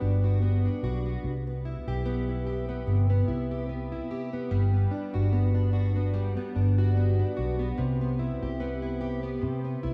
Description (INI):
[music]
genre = indie pop, bedroom pop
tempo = 73 BPM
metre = 4/4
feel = swing 55% on 16ths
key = unclear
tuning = A4 = 439 Hz
[part]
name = fingerpicked plugged-in steel-string acoustic guitar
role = accompaniment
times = 0.0-9.9 s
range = C3 to G4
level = -34 LUFS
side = equal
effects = analog chorus, warbly pitch drift
[part]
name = vintage muted fingered electric bass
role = bass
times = 0.0-9.9 s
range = G1 to C3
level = -29 LUFS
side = equal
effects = none
[sound]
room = moderate lush hall reverb, RT60 2.8 s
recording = dreamy mix soaked in reverb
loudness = -28 LUFS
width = mono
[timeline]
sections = 0.0-9.9 A section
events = none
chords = 0.0 Gmaj7; 1.2 Cmaj7